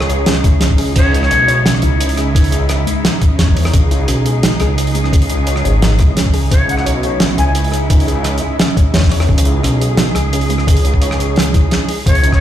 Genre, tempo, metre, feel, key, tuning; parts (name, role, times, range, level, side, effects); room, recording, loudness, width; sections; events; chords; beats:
half-time drum and bass; 173 BPM; 4/4; half-time; C# minor; A4 = 440 Hz
muted studio cello section; sustained chords; 0.0-12.4 s; C#3 to G#4; -21 LUFS; equal; vintage 12-bit sampler grit, sidechain pumping
warbly dusty pluck; arpeggios; 0.0-12.4 s; G#3 to C#5; -22 LUFS; left 1 dB; chorus, ping-pong delay
dark detuned saw bass; bass; 0.0-12.4 s; G#1 to E2; -15 LUFS; equal; tube saturation
warm soul drum kit; drums; 0.0-12.4 s; crash cymbal, hi-hat, rim click, snare drum; -18 LUFS; right 1 dB
electronic kick drum; drums; 0.4-12.4 s; -12 LUFS; equal
jazz flute; melody; 1.0-1.6, 6.5-7.5, 12.1-12.4 s; C#5 to G#5; -19 LUFS; left 2 dB; vintage 12-bit sampler grit, ping-pong delay
light reverb, small room ambience; played on a big sound system in a bare room, large studio reverb; -11 LUFS; side -11 dB against mid
0.0-12.1 A section
drop 0.0-12.1; break 11.7-12.1
0.0 C#madd9
0.27 0.62 | 0.96 1.31 1.66 2.00 | 2.35 2.70 3.04 3.39 | 3.74 4.08 4.43 4.78 | 5.12 5.47 5.82 6.17 | 6.51 6.86 7.21 7.55 | 7.90 8.25 8.59 8.94 | 9.29 9.63 9.98 10.33 | 10.67 11.02 11.37 11.71 | 12.06